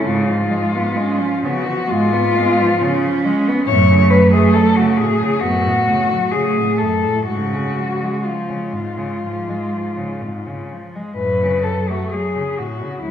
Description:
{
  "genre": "classical, lyrical piece for cello ensemble",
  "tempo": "61-70 BPM",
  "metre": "4/4",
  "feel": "rubato",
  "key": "F# minor",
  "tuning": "A4 = 441 Hz",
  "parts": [
    { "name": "muted cello", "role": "melody", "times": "0.0-13.1 s", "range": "E4 to C#5", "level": "-19 LUFS", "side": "left 3 dB", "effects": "none" },
    { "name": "muted cello", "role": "second line", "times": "0.0-13.1 s", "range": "E#3 to C#4", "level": "-21 LUFS", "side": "right 4 dB", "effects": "none" },
    { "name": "muted cello", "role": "accompaniment", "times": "0.0-13.1 s", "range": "F#2 to B3", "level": "-24 LUFS", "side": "left 1 dB", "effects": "none" },
    { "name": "muted cello", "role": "bass", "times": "0.1-13.1 s", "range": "C#2 to C#3", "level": "-21 LUFS", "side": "right 2 dB", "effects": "none" }
  ],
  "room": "wet recital hall reverb, RT60 1.6 s",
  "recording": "heard from further back in the room",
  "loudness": "-15 LUFS",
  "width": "side -9 dB against mid",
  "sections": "0.0-13.1 A section",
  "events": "none",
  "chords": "0.1 C#7/G#; 3.7 F#m; 7.3 C#/G#; 11.2 F#m"
}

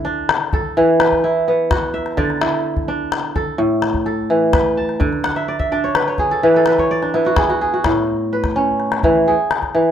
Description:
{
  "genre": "west african traditional, West African string and xylophone music",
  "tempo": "85 BPM (dotted quarters)",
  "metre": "12/8",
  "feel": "straight",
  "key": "D lydian",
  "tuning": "A4 = 439 Hz",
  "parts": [
    { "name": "kora", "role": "arpeggios", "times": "0.0-9.9 s", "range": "A2 to A5", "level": "-16 LUFS", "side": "right 1 dB", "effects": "none" },
    { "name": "calabash", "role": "percussion", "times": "0.3-9.7 s", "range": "none", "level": "-21 LUFS", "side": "left 4 dB", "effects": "none" }
  ],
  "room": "little or no reverb",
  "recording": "dry, close 1970s-style studio recording",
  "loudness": "-15 LUFS",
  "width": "side -9 dB against mid",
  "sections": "0.0-7.8 A section; 7.8-9.9 B section",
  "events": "kora fill 5.2-7.8",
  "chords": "0.0 D5; 0.8 E5; 2.2 D; 3.6 A5; 5.0 D5; 6.4 E5; 7.8 A; 9.3 E"
}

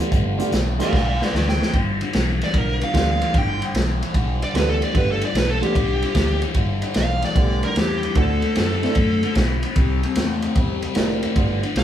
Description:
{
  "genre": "electric blues shuffle",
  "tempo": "150 BPM",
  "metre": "4/4",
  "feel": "swing 68% on 8ths",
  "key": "G mixolydian",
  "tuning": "A4 = 440 Hz",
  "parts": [
    { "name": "dark upright piano", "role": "accompaniment", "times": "0.0-11.6 s", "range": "A3 to A4", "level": "-27 LUFS", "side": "right 4 dB", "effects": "none" },
    { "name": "raw garage guitar", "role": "riff", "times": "0.0-11.8 s", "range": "G2 to B3", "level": "-24 LUFS", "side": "left 3 dB", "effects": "overdrive, phaser" },
    { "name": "vintage muted fingered electric bass", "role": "bass", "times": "0.1-11.8 s", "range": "F1 to F#2", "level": "-24 LUFS", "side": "equal", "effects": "none" },
    { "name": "crunchy breakbeat drum kit", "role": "drums", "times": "0.1-11.8 s", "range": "hi-hat, kick drum, ride cymbal, snare drum", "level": "-22 LUFS", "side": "equal", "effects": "none" },
    { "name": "smooth overdriven lead guitar", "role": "melody", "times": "0.8-9.3, 11.8 s", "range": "G4 to G5", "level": "-25 LUFS", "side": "equal", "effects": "none" }
  ],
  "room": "moderate large studio reverb, RT60 0.9 s",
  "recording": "band playing live in one room",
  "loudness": "-18 LUFS",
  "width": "side -10 dB against mid",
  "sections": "0.0-1.7 A section; 1.7-11.8 A section",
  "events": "lead electric guitar solo 0.0-11.8; drum fill 0.9-1.7",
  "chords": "0.0 G9; 8.2 D9; 9.8 C9"
}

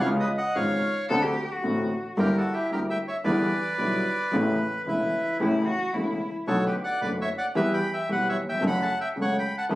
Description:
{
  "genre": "tango",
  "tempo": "112 BPM",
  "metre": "4/4",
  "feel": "rubato",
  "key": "unclear",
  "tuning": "A4 = 440 Hz",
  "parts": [
    { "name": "bandoneon", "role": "melody", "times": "0.0-9.7 s", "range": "E4 to B5", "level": "-27 LUFS", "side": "equal", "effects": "none" },
    { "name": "warm concert grand piano", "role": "accompaniment", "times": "0.0-9.8 s", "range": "E1 to A4", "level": "-27 LUFS", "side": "left 1 dB", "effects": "none" },
    { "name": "clear double bass", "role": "bass", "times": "0.0-9.8 s", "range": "E1 to E2", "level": "-32 LUFS", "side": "right 1 dB", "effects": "none" },
    { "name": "warm cello", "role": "second line", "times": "1.1-2.0, 5.4-6.3 s", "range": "E4 to A4", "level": "-28 LUFS", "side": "left 1 dB", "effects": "none" }
  ],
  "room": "moderate club reverb, RT60 0.6 s",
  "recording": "recorded on a phone in the room, club reverb, compression",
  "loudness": "-23 LUFS",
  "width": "side -16 dB against mid",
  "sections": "0.0-9.8 A section",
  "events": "none",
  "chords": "0.0 C#7; 1.1 D7; 2.2 Gm6; 3.2 Em7; 4.3 Aadd9; 6.5 Bm7; 7.6 Em; 8.6 F#m"
}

